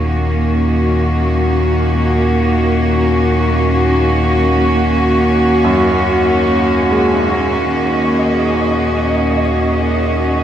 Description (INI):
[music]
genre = dark ambient drone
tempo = free time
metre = none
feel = none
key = Eb minor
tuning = A4 = 440 Hz
[part]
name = warm chamber cello section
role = sustained chords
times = 0.0-10.4 s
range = Eb3 to Gb4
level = -14 LUFS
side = equal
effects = none
[part]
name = clear baby grand piano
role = arpeggios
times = 0.0-10.4 s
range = Gb2 to Ab3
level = -21 LUFS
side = right 1 dB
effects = diffuse ambient delay
[part]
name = deep rumbling drone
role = drone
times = 0.0-10.4 s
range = Eb2 to Bb2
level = -18 LUFS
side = equal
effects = built-in reverb
[part]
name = flickering grainy texture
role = texture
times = 7.6-10.4 s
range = Eb5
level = -22 LUFS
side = right 1 dB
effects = built-in reverb
[sound]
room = wet huge ambient reverb, RT60 7.5 s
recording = cassette tape, nothing above 10.6 kHz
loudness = -12 LUFS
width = side -10 dB against mid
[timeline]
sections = 0.0-7.6 A section; 7.6-10.4 B section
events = none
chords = 0.0 Ebm7